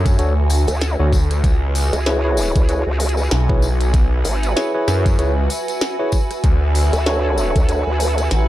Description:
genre	glitch hop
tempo	96 BPM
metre	4/4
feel	swing 58% on 16ths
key	C# phrygian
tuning	A4 = 440 Hz
part	mellow tine electric piano	stabs	0.0-7.8 s	D4 to C#5	-24 LUFS	equal	sidechain pumping, digital delay
part	phased detuned saw bass	bass	0.0-8.5 s	A1 to F#2	-17 LUFS	equal	phaser, overdrive
part	granular cloud pad	texture	0.0-8.5 s	F#4 to G#5	-25 LUFS	right 2 dB	built-in reverb, sidechain pumping
part	electronic kick drum	drums	0.1-7.7 s	none	-16 LUFS	equal	overdrive
part	glitchy drum kit	drums	0.1-8.5 s	hi-hat, rim click, snare drum	-25 LUFS	equal	none
part	tambourine	percussion	0.1-8.5 s	none	-32 LUFS	left 4 dB	none
part	vowel-sweep wobble bass	bass	0.7-8.3 s	G#1 to D2	-19 LUFS	equal	chorus
room	digital ambience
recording	dark, warm production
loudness	-15 LUFS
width	side -14 dB against mid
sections	0.0-8.5 A section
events	none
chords	0.0 Dmaj7; 1.4 C#m7; 6.4 Dmaj7

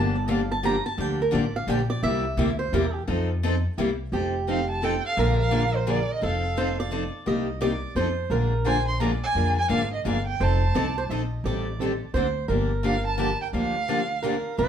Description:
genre	acoustic string swing (jazz manouche)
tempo	172 BPM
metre	3/4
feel	swing 61% on 8ths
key	F mixolydian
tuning	A4 = 439 Hz
part	picked swing-style acoustic guitar	second line	0.0-14.7 s	G4 to Bb5	-29 LUFS	right 4 dB	none
part	picked plugged-in steel-string acoustic guitar	accompaniment	0.0-14.7 s	C3 to C5	-32 LUFS	right 5 dB	none
part	picked steel-string acoustic guitar	accompaniment	0.0-14.7 s	C3 to C5	-28 LUFS	left 4 dB	none
part	upright bass	bass	0.0-14.7 s	F1 to F2	-27 LUFS	left 1 dB	none
part	dark violin	melody	4.5-14.5 s	C5 to C6	-28 LUFS	right 3 dB	none
room	moderate studio reverb, RT60 0.6 s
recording	band playing live in one room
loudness	-22 LUFS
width	side -8 dB against mid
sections	0.0-4.1 A section; 4.1-14.7 B section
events	steel-string acoustic guitar solo 0.0-4.1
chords	0.0 Gm7; 2.0 C7; 3.1 F7; 3.8 C7; 4.1 F7; 5.2 Bb7; 6.2 F7; 7.3 Cm7; 8.0 F7; 8.3 Bb7; 10.4 F7; 11.4 Am7b5; 12.1 Daug7; 12.5 Gm7

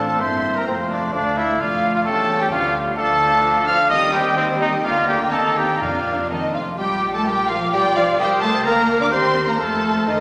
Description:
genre	quick classical-period movement for symphony orchestra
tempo	128 BPM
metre	2/4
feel	rubato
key	Bb major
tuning	A4 = 437 Hz
part	warm studio violin section	melody	0.0-10.2 s	C5 to F6	-27 LUFS	equal	none
part	mellow cor anglais	second line	0.0-10.2 s	Eb4 to Eb5	-30 LUFS	equal	none
part	rich studio violin section	second line	0.0-10.2 s	Eb4 to F6	-31 LUFS	equal	none
part	silver concert flute	second line	0.0-10.1 s	E5 to G6	-29 LUFS	equal	none
part	warm clarinet	second line	0.0-10.2 s	A3 to C5	-33 LUFS	equal	none
part	rich studio viola section	accompaniment	0.0-10.2 s	F3 to D5	-30 LUFS	equal	none
part	mellow French horn section	sustained chords	0.0-10.2 s	Eb3 to F4	-31 LUFS	equal	none
part	warm trumpet	stabs	0.0-6.3 s	C4 to F5	-22 LUFS	equal	none
part	dark studio cello section	bass	0.0-10.2 s	D2 to D4	-31 LUFS	equal	none
part	warm studio double bass section	bass	0.0-10.2 s	E1 to F2	-36 LUFS	equal	none
part	timpani	percussion	5.8-6.3 s	F2	-38 LUFS	equal	none
room	wet scoring stage reverb, RT60 1.9 s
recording	none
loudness	-19 LUFS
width	mono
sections	0.0-6.8 A section; 6.8-10.2 B section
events	none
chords	0.2 C7/G; 0.7 F; 1.1 Dm; 2.1 A7/E; 2.5 Dm; 3.9 Cm/Eb; 4.8 Bb/D; 5.3 Eb; 5.8 Bb/F; 6.3 F; 6.8 Bb; 7.7 G7/B; 8.2 Cm7; 8.7 Bb/D; 9.1 Cm7/Eb; 9.6 F

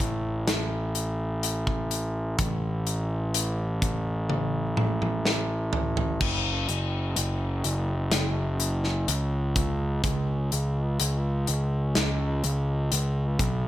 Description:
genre	post-rock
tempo	63 BPM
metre	4/4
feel	straight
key	F# minor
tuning	A4 = 441 Hz
part	fuzz picked electric bass	bass	0.0-13.7 s	F#1 to C#2	-26 LUFS	equal	overdrive
part	big rock drum kit	drums	0.0-13.6 s	crash cymbal, hi-hat, kick drum, snare drum, toms	-28 LUFS	left 1 dB	none
room	little or no reverb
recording	none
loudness	-24 LUFS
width	side -13 dB against mid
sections	0.0-6.2 A section; 6.2-13.7 B section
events	drum fill 4.3-6.2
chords	none

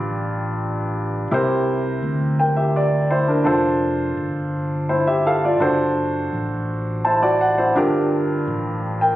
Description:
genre	gospel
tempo	56 BPM (dotted quarters)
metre	6/8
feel	straight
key	F major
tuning	A4 = 440 Hz
part	warm upright piano	accompaniment	0.0-9.2 s	G2 to A5	-19 LUFS	equal	none
part	fingered electric bass	bass	0.0-9.2 s	F1 to D2	-25 LUFS	equal	none
room	light reverb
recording	recorded on a phone in the room, studio reverb, compression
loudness	-18 LUFS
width	side -14 dB against mid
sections	0.0-9.2 A section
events	upright piano fill 6.7-7.8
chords	0.0 G7; 1.3 C7; 3.5 F6; 5.6 D7/F#; 7.8 Gm7

